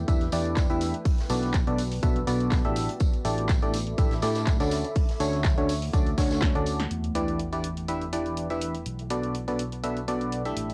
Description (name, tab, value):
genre	piano house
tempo	123 BPM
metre	4/4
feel	swing 54% on 16ths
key	unclear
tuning	A4 = 440 Hz
part	fingered electric bass	bass	0.0-10.7 s	A1 to A2	-34 LUFS	equal	sidechain pumping, low-pass filter
part	deep dark ambient pad	texture	0.0-10.7 s	A3 to D6	-40 LUFS	equal	chorus, built-in reverb, sidechain pumping, cassette tape
part	barking FM electric piano	riff	0.1-10.7 s	B2 to E5	-31 LUFS	equal	chorus, sidechain pumping, low-pass filter, cassette tape, tape echo
part	electronic kick drum	drums	0.1-6.5 s	none	-26 LUFS	equal	overdrive
part	punchy analog drum machine	drums	0.1-10.7 s	handclaps, hi-hat, snare drum	-38 LUFS	equal	none
part	unplugged drum kit	drums	0.1-10.7 s	hi-hat, snare drum, tambourine	-44 LUFS	equal	sidechain pumping on hats, high-pass filter on hats, low-pass filter on hats, high-pass filter on snare, low-pass filter on snare, sidechain pumping on perc, high-pass filter on perc, low-pass filter on perc, high-pass filter on room, low-pass filter on room
part	sub drop	sound effects	6.9-8.9 s	none	-40 LUFS	equal	none
room	light reverb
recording	home recording on cassette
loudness	-26 LUFS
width	mono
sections	0.0-6.9 A section; 6.9-10.7 B section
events	drum fill 6.4-6.9; impact 6.9-8.9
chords	0.0 Em7; 1.1 Bm7; 2.8 A7sus4; 4.7 Dmaj7; 6.9 Em7; 8.9 Bm7